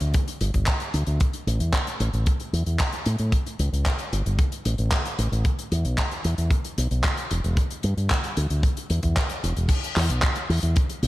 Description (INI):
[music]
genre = italo disco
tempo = 113 BPM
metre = 4/4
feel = straight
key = E dorian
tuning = A4 = 439 Hz
[part]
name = fingered electric bass with an envelope filter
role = bass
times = 0.0-11.1 s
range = E1 to A2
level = -24 LUFS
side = equal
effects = none
[part]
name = tight funk drum kit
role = drums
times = 0.0-11.1 s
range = crash cymbal, handclaps, hi-hat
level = -29 LUFS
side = equal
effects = gated reverb
[part]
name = kick drum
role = drums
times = 0.1-10.9 s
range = none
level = -23 LUFS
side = equal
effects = none
[sound]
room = little or no reverb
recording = vinyl crackle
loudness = -22 LUFS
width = side -17 dB against mid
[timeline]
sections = 0.0-9.7 A section; 9.7-11.1 B section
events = none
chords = none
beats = 0.14 0.67 | 1.20 1.73 2.27 2.80 | 3.33 3.86 4.39 4.92 | 5.45 5.98 6.51 7.04 | 7.58 8.11 8.64 9.17 | 9.70 10.23 10.76